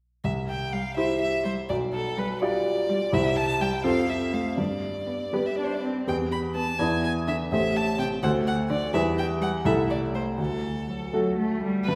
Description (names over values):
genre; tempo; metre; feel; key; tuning
quick classical-period movement for piano quartet; 83 BPM (dotted quarters); 6/8; rubato; C major; A4 = 441 Hz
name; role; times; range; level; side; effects
rich violin; melody; 0.2-12.0 s; A4 to B5; -32 LUFS; equal; none
clear baby grand piano; accompaniment; 0.2-12.0 s; A1 to D5; -28 LUFS; equal; none
rich cello; second line; 0.7-11.9 s; C3 to D4; -35 LUFS; equal; none
clear violin; second line; 11.9-12.0 s; B4; -30 LUFS; equal; none
room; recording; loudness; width
wet scoring stage reverb, RT60 1.7 s; recorded in a church or concert hall, faint mains hum; -26 LUFS; mono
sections
0.2-11.9 A section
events
none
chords
0.2 C; 1.7 G7/B; 3.1 C; 3.8 F; 4.6 G; 6.1 Em; 6.8 E5; 7.5 Am7; 8.2 D5; 8.9 Em; 9.7 Am/C; 10.4 D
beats
| 0.24 0.97 | 1.70 2.42 | 3.13 3.85 | 4.58 5.33 | 6.07 6.80 | 7.51 8.22 | 8.94 9.65 | 10.39 11.14 | 11.89